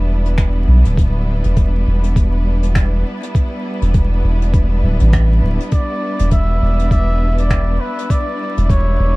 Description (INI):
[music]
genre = ambient dub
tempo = 101 BPM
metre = 4/4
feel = swing 59% on 16ths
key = E minor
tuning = A4 = 439 Hz
[part]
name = bright studio string section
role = sustained chords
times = 0.0-9.2 s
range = G3 to B4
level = -24 LUFS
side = equal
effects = vintage 12-bit sampler grit
[part]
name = soft dub sub bass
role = bass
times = 0.0-9.2 s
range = D1 to B1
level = -14 LUFS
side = equal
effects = none
[part]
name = jazz brush drum kit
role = drums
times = 0.3-8.8 s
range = finger snaps, hi-hat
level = -30 LUFS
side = left 1 dB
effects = dub echo
[part]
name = electronic kick drum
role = drums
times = 0.4-8.8 s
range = none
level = -15 LUFS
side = equal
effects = none
[part]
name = trumpet with cup mute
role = melody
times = 5.7-9.2 s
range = B4 to E5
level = -22 LUFS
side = equal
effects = dub echo
[sound]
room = small room ambience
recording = dark, warm production, vinyl crackle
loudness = -13 LUFS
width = side -22 dB against mid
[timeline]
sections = 0.0-9.2 A section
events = none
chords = 0.0 Em7